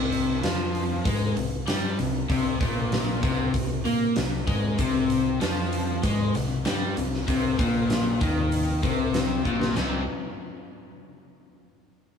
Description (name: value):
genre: classic rock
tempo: 96 BPM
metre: 4/4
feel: straight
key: C minor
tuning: A4 = 440 Hz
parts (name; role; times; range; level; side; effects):
- crunchy overdriven guitar; riff; 0.0-10.0 s; Bb2 to C4; -31 LUFS; right 6 dB; none
- overdriven electric guitar; riff; 0.0-10.0 s; Bb2 to Eb4; -30 LUFS; left 7 dB; none
- overdriven electric guitar; riff; 0.0-10.0 s; Bb2 to C4; -31 LUFS; left 2 dB; none
- growling fingered electric bass; bass; 0.0-10.1 s; Bb1 to Bb2; -30 LUFS; equal; overdrive
- huge arena drum kit; drums; 0.1-9.9 s; china cymbal, hi-hat, kick drum, snare drum; -28 LUFS; left 1 dB; none
- egg shaker; percussion; 4.8-10.1 s; none; -49 LUFS; right 7 dB; none
room: moderate stone room reverb, RT60 1.3 s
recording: band playing live in one room, small room ambience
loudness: -23 LUFS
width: side -7 dB against mid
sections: 0.0-9.8 A section; 9.8-12.2 B section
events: drum fill 9.5-9.8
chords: 0.0 Cm; 9.8 C5